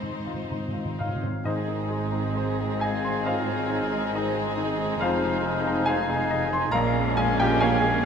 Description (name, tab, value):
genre	classical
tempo	62-71 BPM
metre	4/4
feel	rubato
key	Ab major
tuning	A4 = 442 Hz
part	clear baby grand piano	melody	0.0-8.1 s	Bb1 to C6	-28 LUFS	left 2 dB	none
part	dark symphonic violin section	melody	0.0-8.1 s	Ab4 to C5	-35 LUFS	left 4 dB	none
part	warm chamber violin section	second line	0.0-8.1 s	Db4 to Eb4	-35 LUFS	left 1 dB	none
part	rich chamber viola section	accompaniment	0.0-8.1 s	Bb3 to C4	-35 LUFS	right 1 dB	none
part	warm studio cello section	bass	0.0-8.1 s	F2 to Bb2	-34 LUFS	right 2 dB	none
part	timpani	percussion	0.0-2.8 s	Ab2	-33 LUFS	right 1 dB	none
part	clear oboe	second line	1.0-8.1 s	Eb5 to Bb5	-34 LUFS	right 1 dB	none
part	mellow concert flute	second line	1.0-8.0 s	C5 to F5	-36 LUFS	left 6 dB	none
part	warm French horn section	sustained chords	1.4-8.1 s	Ab3 to Eb4	-34 LUFS	left 3 dB	none
part	rich chamber double bass section	bass	1.4-8.1 s	F1 to Bb1	-33 LUFS	right 8 dB	none
part	bright clarinet	second line	1.5-8.1 s	C4 to Eb4	-36 LUFS	left 1 dB	none
part	clear bassoon	accompaniment	1.5-8.1 s	Ab3	-35 LUFS	right 3 dB	none
part	mellow tuba	bass	1.5-8.1 s	F1 to Bb1	-34 LUFS	right 7 dB	none
room	light reverb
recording	close, detailed microphones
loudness	-23 LUFS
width	side -7 dB against mid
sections	0.0-1.4 A section; 1.4-8.1 A section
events	timpani fill 0.0-1.4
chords	0.0 Ab; 5.0 Fm7; 6.7 Bbm7